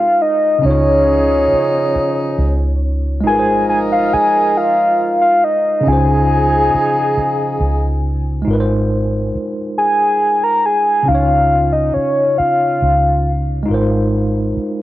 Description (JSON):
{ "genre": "R&B", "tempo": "46 BPM (dotted quarters)", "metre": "6/8", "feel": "straight", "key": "Ab major", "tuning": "A4 = 439 Hz", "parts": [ { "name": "soft octave-layered synth lead", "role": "melody", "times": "0.0-13.3 s", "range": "Db5 to Bb5", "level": "-14 LUFS", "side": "equal", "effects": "chorus, cassette tape, plate reverb, tape echo" }, { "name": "tine electric piano", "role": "accompaniment", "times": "0.0-14.8 s", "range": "Db3 to Db5", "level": "-20 LUFS", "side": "equal", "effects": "overdrive, fast stereo tremolo, cassette tape, plate reverb" }, { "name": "mellow horn section", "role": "stabs", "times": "0.0-8.0 s", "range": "C3 to Bb4", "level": "-22 LUFS", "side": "right 2 dB", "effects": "cassette tape, plate reverb" }, { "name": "vintage muted fingered electric bass", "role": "bass", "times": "0.6-14.6 s", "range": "Ab1 to Db2", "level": "-17 LUFS", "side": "equal", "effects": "none" } ], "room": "moderate booth ambience, RT60 0.2 s", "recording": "home recording on cassette", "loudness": "-12 LUFS", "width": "side -15 dB against mid", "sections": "0.0-8.5 A section; 8.5-14.8 B section", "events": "none", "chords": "0.0 Ab6; 0.6 Dbadd9; 3.2 Ab6; 5.9 Dbmaj9; 8.5 Ab6; 11.1 Dbadd9; 13.7 Ab6", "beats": "| 0.64 1.94 | 3.24 4.55 | 5.85 7.16 | 8.46 9.77 | 11.07 12.37 | 13.68" }